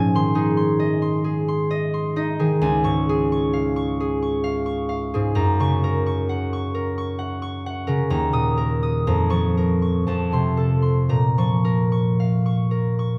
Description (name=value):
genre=classical, solo harp piece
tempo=55-68 BPM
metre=3/4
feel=rubato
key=Bb minor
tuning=A4 = 441 Hz
part: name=concert harp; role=solo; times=0.0-13.2 s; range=Db2 to Eb6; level=-21 LUFS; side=equal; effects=none
room=light reverb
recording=none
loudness=-22 LUFS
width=mono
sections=0.0-13.2 A section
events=none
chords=0.0 Ab; 2.6 Db; 5.4 Gb; 8.1 Ebm; 9.1 Bbm/F; 10.1 F; 11.1 Bbm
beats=0.82 1.73 | 2.62 3.54 4.45 | 5.36 6.29 7.20 | 8.11 9.06 10.05 | 11.10 12.19